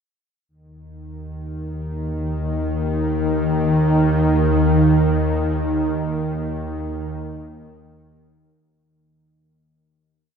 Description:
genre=ambient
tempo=free time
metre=none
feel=none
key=unclear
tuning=A4 = 440 Hz
part: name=bowed-like drone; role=solo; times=1.4-9.0 s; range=Eb2 to Eb3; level=-18 LUFS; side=equal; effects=built-in reverb
room=wet huge ambient reverb, RT60 7.7 s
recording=dark, warm production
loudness=-18 LUFS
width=side -6 dB against mid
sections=0.5-8.9 A section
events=fade-out 4.7-8.9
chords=none

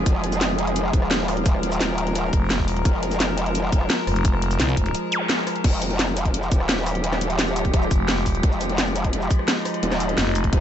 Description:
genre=dark technical drum and bass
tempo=172 BPM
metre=4/4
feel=straight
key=F minor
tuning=A4 = 440 Hz
part: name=metallic inharmonic drone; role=sustained chords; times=0.0-10.6 s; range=F3 to Bb4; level=-26 LUFS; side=equal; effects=chorus, built-in reverb, sidechain pumping
part: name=growl bass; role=bass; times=0.0-10.6 s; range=Eb1 to F1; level=-24 LUFS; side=equal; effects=chorus, tube saturation
part: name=drum and bass drum kit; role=drums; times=0.1-10.6 s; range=crash cymbal, hi-hat, rim click, shaker, snare drum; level=-25 LUFS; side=equal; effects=none
part: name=electronic kick drum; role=drums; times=0.1-10.6 s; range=none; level=-20 LUFS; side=equal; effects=none
part: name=growling FM bass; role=bass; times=2.3-4.9, 7.9-10.5 s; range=F1 to C2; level=-23 LUFS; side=equal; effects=tube saturation
part: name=zap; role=sound effects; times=5.1-5.2 s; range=none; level=-26 LUFS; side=equal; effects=none
room=digital ambience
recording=nothing above 8.0 kHz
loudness=-19 LUFS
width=side -10 dB against mid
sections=0.0-5.6 A section; 5.6-10.6 A section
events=drop 0.0-5.6, 5.6-10.6; break 4.9-5.6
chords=0.0 Fm; 5.6 Fmadd9

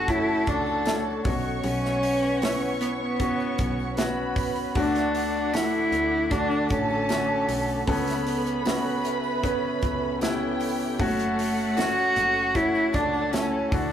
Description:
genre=pop ballad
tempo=77 BPM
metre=4/4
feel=straight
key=unclear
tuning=A4 = 440 Hz
part: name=warm cello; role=melody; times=0.0-13.9 s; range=A3 to F#4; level=-26 LUFS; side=equal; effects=none
part: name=warm studio violin section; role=second line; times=0.0-13.9 s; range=F#4 to C#6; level=-32 LUFS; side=right 2 dB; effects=none
part: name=clear concert grand piano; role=accompaniment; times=0.0-13.9 s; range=B2 to C#5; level=-28 LUFS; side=left 2 dB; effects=none
part: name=ethereal airy pad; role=sustained chords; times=0.0-13.9 s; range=A4 to D6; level=-38 LUFS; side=equal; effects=none
part: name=picked plugged-in steel-string acoustic guitar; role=arpeggios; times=0.0-13.9 s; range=F#2 to A4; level=-39 LUFS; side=right 2 dB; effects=none
part: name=woody fretless electric bass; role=bass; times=0.0-13.9 s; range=F#1 to D2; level=-36 LUFS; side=equal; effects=none
part: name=modern studio drum kit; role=drums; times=0.1-13.9 s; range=hi-hat, kick drum, snare drum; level=-31 LUFS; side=right 1 dB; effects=none
part: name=tambourine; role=percussion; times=0.1-13.9 s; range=none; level=-50 LUFS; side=left 5 dB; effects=none
room=wet small room reverb, RT60 0.5 s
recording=rough rehearsal-room recording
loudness=-22 LUFS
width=side -9 dB against mid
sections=0.0-13.9 A section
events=none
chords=0.0 F#m; 1.3 Bsus2; 4.8 D; 7.9 Aadd9/C#; 11.0 F#m

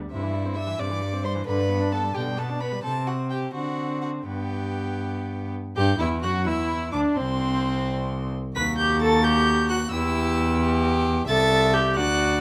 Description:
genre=quick classical-period movement for string quartet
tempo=87 BPM (dotted quarters)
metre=6/8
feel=rubato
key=G major, E minor from 5.8 s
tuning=A4 = 440 Hz
part: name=rich viola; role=accompaniment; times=0.0-12.4 s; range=C3 to B4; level=-30 LUFS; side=equal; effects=none
part: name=warm violin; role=melody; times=0.1-12.4 s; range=E5 to B6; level=-33 LUFS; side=equal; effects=none
part: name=warm violin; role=second line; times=0.1-12.4 s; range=C4 to E5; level=-32 LUFS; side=equal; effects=none
part: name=rich cello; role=bass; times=0.1-12.4 s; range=C2 to D3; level=-28 LUFS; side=equal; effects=none
room=light reverb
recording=close, detailed microphones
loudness=-24 LUFS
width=mono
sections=0.0-5.8 A section; 5.8-12.4 B section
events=none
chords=0.1 C/G; 1.5 G; 2.2 G/B; 2.8 F#dim/C; 3.5 D7; 4.3 G; 5.8 Em; 7.2 N.C.; 8.6 B7b13/D# (rootless); 9.9 Em; 11.3 C

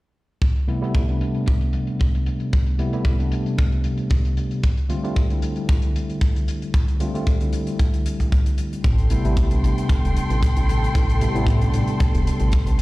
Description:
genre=nu-disco, nu disco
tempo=114 BPM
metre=4/4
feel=swing 54% on 16ths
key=A minor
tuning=A4 = 440 Hz
part: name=hi-hat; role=drums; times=0.4-12.8 s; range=none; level=-42 LUFS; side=left 4 dB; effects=low-pass filter on hats, low-pass filter on room
part: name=kick drum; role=drums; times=0.4-12.6 s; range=none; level=-20 LUFS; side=equal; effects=none
part: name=tine electric piano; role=accompaniment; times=0.7-12.8 s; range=C3 to F4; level=-24 LUFS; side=equal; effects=medium stereo tremolo, sidechain pumping, tape echo
part: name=warm studio violin section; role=sustained chords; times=8.8-12.8 s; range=A4 to C6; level=-29 LUFS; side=equal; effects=sidechain pumping
part: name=fat analog bass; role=bass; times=8.8-12.8 s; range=E1 to A1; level=-20 LUFS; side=equal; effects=none
room=studio reverb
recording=played on a big sound system in a bare room, large studio reverb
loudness=-18 LUFS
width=side -20 dB against mid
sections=0.4-12.8 A section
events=none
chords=0.4 Am7; 4.6 G9sus4; 8.8 Am7

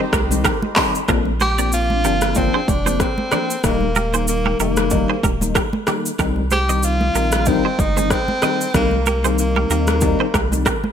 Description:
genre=afrobeats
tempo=94 BPM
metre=4/4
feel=swing 55% on 16ths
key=C minor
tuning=A4 = 435 Hz
part: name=clear tenor saxophone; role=melody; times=0.0-10.6 s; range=Bb3 to G4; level=-22 LUFS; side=right 1 dB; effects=ping-pong delay
part: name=warm horn section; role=second line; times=0.0-0.7 s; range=Eb4 to C5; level=-31 LUFS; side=right 2 dB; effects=none
part: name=bell-like tine electric piano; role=accompaniment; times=0.0-10.7 s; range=Eb3 to Eb4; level=-23 LUFS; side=left 5 dB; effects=ensemble chorus
part: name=lush unison pad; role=sustained chords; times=0.0-1.1 s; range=G4 to Eb6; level=-39 LUFS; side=left 2 dB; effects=none
part: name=direct-recorded clean electric guitar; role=riff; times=0.0-10.8 s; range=Eb4 to Eb5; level=-25 LUFS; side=right 6 dB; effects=ensemble chorus, ping-pong delay
part: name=saturated sub bass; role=bass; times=0.1-10.7 s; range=Eb1 to Eb2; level=-22 LUFS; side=equal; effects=none
part: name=afro-pop drum kit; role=drums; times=0.1-10.8 s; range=handclaps, hi-hat, kick drum, rim click, shaker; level=-21 LUFS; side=equal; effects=overdrive, gated reverb
part: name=congas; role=percussion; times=0.1-10.9 s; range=none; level=-28 LUFS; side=right 3 dB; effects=none
room=light reverb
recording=bright 1980s-style digital production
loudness=-16 LUFS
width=side -8 dB against mid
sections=0.0-1.1 A section; 1.1-10.9 B section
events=none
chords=0.0 Cm; 1.1 Bbadd9; 3.6 Eb; 6.2 Cm

